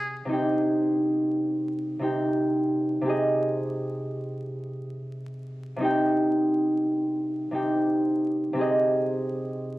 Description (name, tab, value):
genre	hip hop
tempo	87 BPM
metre	4/4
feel	swing 56% on 16ths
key	C minor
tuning	A4 = 439 Hz
part	concert harp	accompaniment	0.0-9.8 s	C3 to G5	-24 LUFS	equal	high-pass filter, low-pass filter
room	light reverb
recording	dry, gritty hardware recording, vinyl crackle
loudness	-23 LUFS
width	side -17 dB against mid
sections	0.3-9.8 A section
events	none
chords	0.3 Cm; 3.0 Abmaj7/C; 5.8 Cm; 8.6 Abmaj7/C